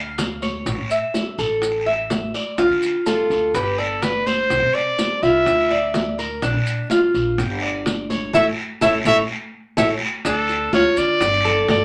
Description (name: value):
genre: latin, Cuban son and guajira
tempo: 125 BPM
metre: 4/4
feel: straight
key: unclear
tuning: A4 = 440 Hz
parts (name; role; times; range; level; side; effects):
- Cuban tres; arpeggios; 0.0-11.8 s; D4 to F5; -23 LUFS; equal; none
- upright bass; bass; 0.0-11.8 s; G1 to D3; -30 LUFS; equal; none
- bongos; percussion; 0.2-11.8 s; none; -30 LUFS; equal; none
- congas; percussion; 0.2-11.8 s; none; -31 LUFS; equal; none
- guiro; percussion; 0.2-11.8 s; none; -32 LUFS; equal; none
- maracas; percussion; 0.2-11.8 s; none; -37 LUFS; equal; none
- warm trumpet; melody; 3.1-11.8 s; F4 to E5; -22 LUFS; equal; none
room: wet small room reverb, RT60 0.5 s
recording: none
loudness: -20 LUFS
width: mono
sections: 0.0-10.3 A section; 10.3-11.8 B section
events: band accent 8.3-10.3; drum fill 9.5-10.3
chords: 0.0 Dm; 0.7 A5; 2.6 Dm; 3.5 G; 4.5 Csus2; 5.5 Dmadd9; 6.4 Bb; 7.4 G5; 8.3 A; 10.3 Dm; 11.2 Gsus2